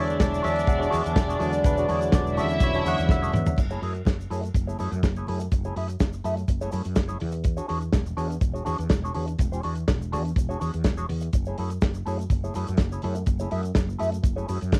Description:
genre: disco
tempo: 124 BPM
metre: 4/4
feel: straight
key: F# minor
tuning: A4 = 437 Hz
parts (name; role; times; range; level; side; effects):
- warm studio string section; second line; 0.0-3.3 s; D4 to E5; -30 LUFS; equal; cassette tape
- mellow electric guitar; accompaniment; 0.0-14.8 s; A3 to E5; -33 LUFS; equal; wah, cassette tape
- tine electric piano; accompaniment; 0.0-3.6 s; D3 to F#5; -30 LUFS; equal; cassette tape
- mellow French horn section; sustained chords; 0.0-3.6 s; G#3 to F#4; -37 LUFS; equal; cassette tape
- woody fretless electric bass; bass; 0.0-14.8 s; E1 to F#2; -32 LUFS; equal; lush chorus
- warm soul drum kit; drums; 0.1-14.8 s; crash cymbal, hi-hat, kick drum, snare drum, toms; -25 LUFS; equal; cassette tape
- tube shaker; percussion; 0.1-14.8 s; none; -53 LUFS; equal; none
- congas; percussion; 0.2-14.8 s; none; -42 LUFS; equal; none
room: light reverb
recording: home recording on cassette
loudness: -25 LUFS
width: mono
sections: 0.0-3.6 A section; 3.6-14.8 B section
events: tine electric piano solo 0.0-3.6; drum fill 3.1-3.6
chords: 0.0 E13; 3.6 F#m9; 7.2 E13; 11.3 F#m9

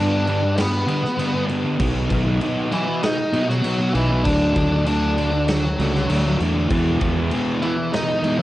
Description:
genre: quiet-loud alternative rock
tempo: 98 BPM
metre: 4/4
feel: straight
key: unclear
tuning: A4 = 442 Hz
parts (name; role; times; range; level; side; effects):
- octave-fuzz lead guitar; melody; 0.0-8.4 s; E3 to D#5; -23 LUFS; equal; distortion, cassette tape
- fuzz guitar; riff; 0.0-8.4 s; G2 to E4; -22 LUFS; equal; distortion, cassette tape
- fuzz fingered electric bass; bass; 0.0-7.3 s; B1 to G2; -22 LUFS; equal; overdrive
- big rock drum kit; drums; 0.3-8.4 s; crash cymbal, kick drum, snare drum; -27 LUFS; equal; cassette tape
- distorted electric guitar; riff; 6.7-8.4 s; E2 to E3; -28 LUFS; equal; distortion, cassette tape
room: small room ambience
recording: home recording on cassette, nothing above 10.8 kHz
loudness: -18 LUFS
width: side -15 dB against mid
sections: 0.0-8.4 A section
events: none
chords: 0.0 G; 1.8 B; 4.3 D; 6.7 E

